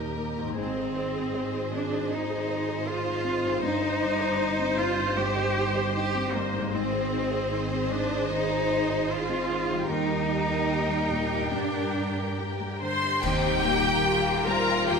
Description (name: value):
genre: cinematic, emotional film score for orchestra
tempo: 69-79 BPM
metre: 4/4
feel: rubato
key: unclear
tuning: A4 = 440 Hz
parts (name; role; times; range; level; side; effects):
- rich studio violin section; melody; 0.0-15.0 s; Eb5 to C6; -33 LUFS; left 2 dB; none
- dark studio violin section; second line; 0.0-15.0 s; Bb3 to C5; -32 LUFS; left 3 dB; none
- felt-muted upright piano; accompaniment; 0.0-15.0 s; Eb2 to C5; -33 LUFS; left 2 dB; none
- warm studio viola section; accompaniment; 0.0-15.0 s; G4 to C5; -34 LUFS; right 1 dB; none
- concert harp; arpeggios; 0.0-15.0 s; G2 to C5; -37 LUFS; left 4 dB; none
- rich studio double bass section; bass; 0.0-15.0 s; G1 to G2; -34 LUFS; right 4 dB; none
- warm studio cello section; bass; 0.6-15.0 s; Eb2 to G4; -29 LUFS; right 2 dB; none
- cymbal swell, clash cymbals and concert bass drum; percussion; 9.9-14.8 s; none; -37 LUFS; equal; none
room: wet scoring stage reverb, RT60 1.7 s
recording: minimal, uncompressed stereo recording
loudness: -24 LUFS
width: side -5 dB against mid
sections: 0.0-13.2 A section; 13.2-15.0 B section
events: band accent 13.2-14.1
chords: 0.0 Eb; 0.6 Ab; 3.6 Cm/G; 6.7 Ab; 9.9 Eb; 11.5 Gm; 13.2 Eb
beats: | 0.57 1.34 2.10 2.86 | 3.63 4.39 5.16 5.94 | 6.72 7.50 8.30 9.09 | 9.88 10.69 11.53 12.39 | 13.24 14.07 14.89